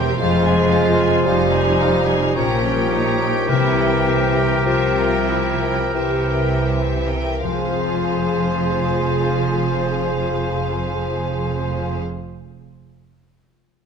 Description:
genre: classical, slow romantic movement for symphony orchestra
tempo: 39-58 BPM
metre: 3/4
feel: rubato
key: F minor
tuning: A4 = 440 Hz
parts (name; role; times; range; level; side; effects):
- warm symphonic violin section; melody; 0.0-12.0 s; E5 to Bb5; -30 LUFS; left 2 dB; none
- bright clarinet; second line; 0.0-12.0 s; F4 to G4; -29 LUFS; left 2 dB; none
- rich symphonic violin section; second line; 0.0-12.0 s; F4 to F5; -29 LUFS; left 3 dB; none
- warm oboe; second line; 0.0-12.0 s; Bb4 to Db5; -28 LUFS; right 1 dB; none
- rich symphonic viola section; accompaniment; 0.0-12.0 s; Db4 to Ab4; -27 LUFS; right 1 dB; none
- warm French horn section; sustained chords; 0.0-12.0 s; F4 to C5; -27 LUFS; left 2 dB; none
- concert harp; arpeggios; 0.0-12.4 s; Bb2 to G5; -26 LUFS; left 13 dB; none
- rich symphonic cello section; bass; 0.0-12.0 s; F2 to C3; -25 LUFS; right 2 dB; none
- warm symphonic double bass section; bass; 0.0-12.0 s; F1 to C2; -25 LUFS; right 5 dB; none
- bright flute section; second line; 0.2-12.0 s; G5 to Ab5; -30 LUFS; left 1 dB; none
- mellow bassoon; accompaniment; 0.2-12.0 s; E3 to Ab3; -24 LUFS; equal; none
- timpani; percussion; 3.5-12.0 s; F2 to C3; -29 LUFS; left 6 dB; none
room: moderate scoring stage reverb, RT60 1.7 s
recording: close, detailed microphones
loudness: -16 LUFS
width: side -6 dB against mid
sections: 0.0-7.4 A section; 7.4-11.8 B section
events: slowing down 0.0-7.4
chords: 0.2 Fm; 2.4 Gdim/Bb; 3.5 C7; 7.4 Fm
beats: | 0.20 1.25 2.35 | 3.49 4.66 5.95 | 7.43 8.89 10.35

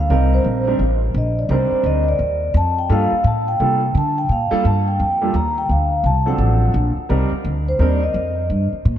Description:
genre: jazz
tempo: 172 BPM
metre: 4/4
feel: swing 63% on 8ths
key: unclear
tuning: A4 = 440 Hz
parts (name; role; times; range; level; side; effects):
- vibraphone with soft mallets; melody; 0.0-8.5 s; C5 to Bb5; -21 LUFS; equal; tape echo
- upright bass; bass; 0.0-9.0 s; A1 to D3; -18 LUFS; equal; none
- clear concert grand piano; accompaniment; 0.1-8.0 s; E#3 to Bb4; -24 LUFS; right 1 dB; lush chorus
room: moderate lush hall reverb, RT60 2.9 s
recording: dreamy mix soaked in reverb, cassette tape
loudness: -16 LUFS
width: side -10 dB against mid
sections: 0.0-9.0 A section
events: none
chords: 0.1 Cm9; 2.9 Gm9; 5.7 D7#9; 7.1 Cm9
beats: | 0.11 0.46 0.81 1.15 | 1.50 1.85 2.20 2.55 | 2.90 3.25 3.60 3.95 | 4.29 4.64 4.99 5.34 | 5.69 6.04 6.39 6.74 | 7.09 7.44 7.79 8.14 | 8.49 8.85

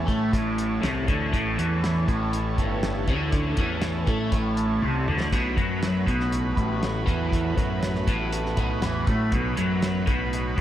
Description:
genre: psychedelic rock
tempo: 120 BPM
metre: 4/4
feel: straight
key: A major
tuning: A4 = 440 Hz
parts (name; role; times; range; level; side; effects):
- overdriven combo organ; sustained chords; 0.0-10.6 s; E3 to B4; -33 LUFS; right 3 dB; none
- crunchy overdriven guitar; riff; 0.0-10.6 s; G2 to A3; -26 LUFS; equal; phaser
- fuzz fingered electric bass; bass; 0.0-10.6 s; G1 to A2; -29 LUFS; equal; overdrive
- analog drone; drone; 0.0-10.6 s; A1 to A2; -34 LUFS; equal; none
- cloth-damped thuddy drum kit; drums; 0.1-10.6 s; hi-hat, kick drum, snare drum, splash cymbal, toms; -28 LUFS; equal; none
room: moderate huge ambient reverb, RT60 8.7 s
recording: dreamy mix soaked in reverb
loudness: -22 LUFS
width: side -12 dB against mid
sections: 0.0-10.6 A section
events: drum fill 4.8-5.3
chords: 0.0 A; 5.3 B5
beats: 0.33 0.83 | 1.33 1.83 2.33 2.83 | 3.33 3.83 4.33 4.83 | 5.33 5.83 6.33 6.83 | 7.33 7.82 8.32 8.82 | 9.32 9.82 10.32

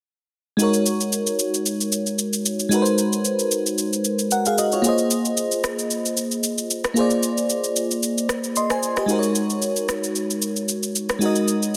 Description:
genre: amapiano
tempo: 113 BPM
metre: 4/4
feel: swing 55% on 16ths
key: Ab mixolydian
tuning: A4 = 440 Hz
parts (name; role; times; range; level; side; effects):
- crystalline FM electric piano; accompaniment; 0.6-11.8 s; Ab3 to C6; -23 LUFS; equal; chorus
- electronic shaker and rim click; drums; 0.6-11.7 s; none; -27 LUFS; equal; none
room: moderate lush hall reverb, RT60 2.3 s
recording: dense, heavily limited modern master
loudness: -22 LUFS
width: mono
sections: 0.6-11.8 A section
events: none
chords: 0.6 Ab9sus4; 4.8 Bb9sus4; 9.1 Ab9sus4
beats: | 0.59 1.13 1.66 2.19 | 2.72 3.25 3.78 4.31 | 4.84 5.37 5.91 6.44 | 6.97 7.50 8.03 8.56 | 9.09 9.62 10.15 10.68 | 11.21 11.75

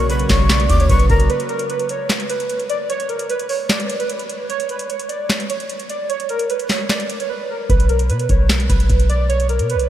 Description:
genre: hip hop, trap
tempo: 150 BPM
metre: 4/4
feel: half-time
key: unclear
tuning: A4 = 440 Hz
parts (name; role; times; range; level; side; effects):
- warbly lo-fi synth keys; melody; 0.0-9.9 s; A#4 to D5; -22 LUFS; right 2 dB; chorus, low-pass filter, analog delay
- breathy jazz flute; second line; 0.0-1.3 s; A#5 to D6; -26 LUFS; left 3 dB; analog delay
- dark concert grand piano; accompaniment; 0.0-1.3 s; C#3 to F#4; -35 LUFS; equal; none
- airy breathy pad; sustained chords; 0.0-1.3 s; C#3 to F#4; -28 LUFS; right 1 dB; chorus
- warm 808-style bass; bass; 0.0-1.3, 7.7-9.9 s; B1 to B2; -17 LUFS; equal; none
- booming analog drum machine; drums; 0.1-9.9 s; handclaps, hi-hat, kick drum, snare drum; -20 LUFS; equal; none
room: moderate huge ambient reverb, RT60 6.0 s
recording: dreamy mix soaked in reverb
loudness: -16 LUFS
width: side -12 dB against mid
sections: 0.0-1.3 A section; 1.3-9.9 B section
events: break 1.3-7.7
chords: 0.0 F#/B; 1.3 N.C.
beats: 0.10 0.50 0.90 | 1.30 1.70 2.10 2.50 | 2.90 3.30 3.70 4.10 | 4.50 4.90 5.30 5.70 | 6.10 6.50 6.90 7.30 | 7.70 8.10 8.50 8.90 | 9.30 9.70

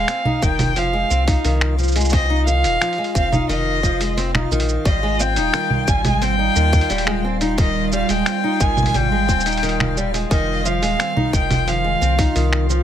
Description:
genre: folktronica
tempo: 88 BPM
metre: 4/4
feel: straight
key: F minor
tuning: A4 = 440 Hz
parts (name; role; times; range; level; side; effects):
- dark violin; melody; 0.0-12.4 s; Eb5 to Ab5; -22 LUFS; left 1 dB; tape echo
- warbly tape-like pad; sustained chords; 0.7-12.8 s; Eb3 to F4; -27 LUFS; right 1 dB; chorus, built-in reverb
- fingerpicked steel-string acoustic guitar; arpeggios; 0.0-12.8 s; Eb3 to Eb4; -24 LUFS; equal; tape echo
- round analog bass; bass; 0.0-12.8 s; Eb1 to Eb2; -21 LUFS; equal; none
- backwards swelling texture; texture; 0.7-12.8 s; F4 to F5; -31 LUFS; equal; built-in reverb
- lo-fi sampler-style drum kit; drums; 0.1-12.8 s; cabasa, congas, finger snaps, hi-hat; -23 LUFS; right 2 dB; none
- electronic kick drum; drums; 0.4-12.3 s; none; -20 LUFS; equal; none
room: light reverb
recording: none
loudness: -16 LUFS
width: side -10 dB against mid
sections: 0.0-12.8 A section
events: none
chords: 0.0 Fm7; 4.9 Abmaj7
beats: 0.08 0.77 1.45 | 2.13 2.81 3.49 4.17 | 4.86 5.54 6.22 6.90 | 7.58 8.27 8.95 9.63 | 10.31 10.99 11.68 12.36

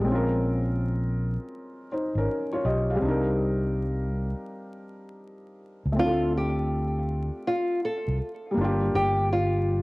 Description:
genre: hip hop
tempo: 81 BPM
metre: 4/4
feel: swing 66% on 16ths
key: D phrygian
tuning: A4 = 441 Hz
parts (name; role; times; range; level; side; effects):
- felt-muted upright piano; accompaniment; 0.0-9.8 s; G3 to F5; -28 LUFS; left 1 dB; low-pass filter, cassette tape
- fretless electric bass; bass; 0.0-9.8 s; G1 to D2; -27 LUFS; equal; none
- nylon-string guitar; melody; 6.0-9.8 s; F4 to A4; -27 LUFS; equal; low-pass filter, cassette tape, analog delay
room: light reverb, studio reverb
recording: home recording on cassette, vinyl crackle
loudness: -24 LUFS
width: side -23 dB against mid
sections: 0.0-9.8 A section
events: none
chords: 0.0 Bbm7; 3.0 Cm7; 6.0 Dm7; 8.6 Gm7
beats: | 0.04 0.79 1.53 2.27 | 3.01 3.75 4.49 5.23 | 5.97 6.71 7.45 8.19 | 8.93 9.67

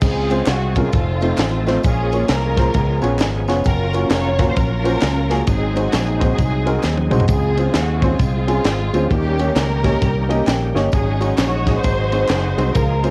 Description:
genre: uptempo gospel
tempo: 132 BPM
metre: 4/4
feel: swing 62% on 8ths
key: Db major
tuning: A4 = 439 Hz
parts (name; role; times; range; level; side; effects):
- warm studio string section; melody; 0.0-13.1 s; Ab3 to Db5; -26 LUFS; equal; cassette tape, tape echo
- warm baby grand piano; accompaniment; 0.0-13.1 s; Ab2 to Bb5; -24 LUFS; equal; cassette tape
- bright tonewheel organ; sustained chords; 0.0-13.1 s; Eb3 to Bb4; -29 LUFS; equal; slow rotary speaker, overdrive, chorus vibrato, cassette tape
- fingered electric bass with an envelope filter; bass; 0.0-13.1 s; F1 to Eb2; -23 LUFS; equal; none
- tight funk drum kit; drums; 0.0-13.1 s; crash cymbal, kick drum, ride cymbal, snare drum, toms; -23 LUFS; equal; cassette tape
- tambourine and handclaps; percussion; 0.0-13.1 s; none; -38 LUFS; equal; none
room: light reverb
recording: home recording on cassette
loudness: -18 LUFS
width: mono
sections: 0.0-13.1 A section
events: drum fill 6.8-7.3; grand piano fill 10.0-10.9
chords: 0.0 Dbmaj7; 0.9 F7; 1.8 Bbm7; 2.7 Db7; 3.7 Gbmaj7; 5.5 Ab7; 7.3 Dbmaj7; 9.1 Eb7; 10.9 Ab7sus4; 11.8 Ab7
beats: | 0.02 0.47 0.93 1.38 | 1.84 2.29 2.75 3.20 | 3.65 4.11 4.56 5.02 | 5.47 5.93 6.38 6.83 | 7.29 7.74 8.20 8.65 | 9.11 9.56 10.02 10.47 | 10.93 11.38 11.84 12.29 | 12.75

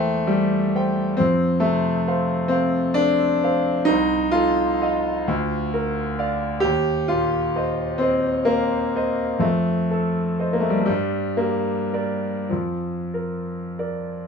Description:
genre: classical, romantic nocturne for solo piano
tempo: 31-46 BPM (dotted quarters)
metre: 12/8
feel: rubato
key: F major, Bb major from 3.9 s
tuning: A4 = 439 Hz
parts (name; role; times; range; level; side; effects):
- bright concert grand piano; solo; 0.0-14.3 s; C2 to G5; -19 LUFS; equal; none
room: moderate studio reverb, RT60 0.9 s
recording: minimal, uncompressed stereo recording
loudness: -19 LUFS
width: side -6 dB against mid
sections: 0.0-14.3 A section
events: none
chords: 0.0 C7/E; 1.2 F; 3.9 F7/C; 5.3 Bb/D; 6.6 Cm7/Eb; 9.4 F7; 10.9 Gm; 12.5 Bb/F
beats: 1.20 2.53 | 3.89 5.29 6.65 8.02 | 9.43 10.89 12.51

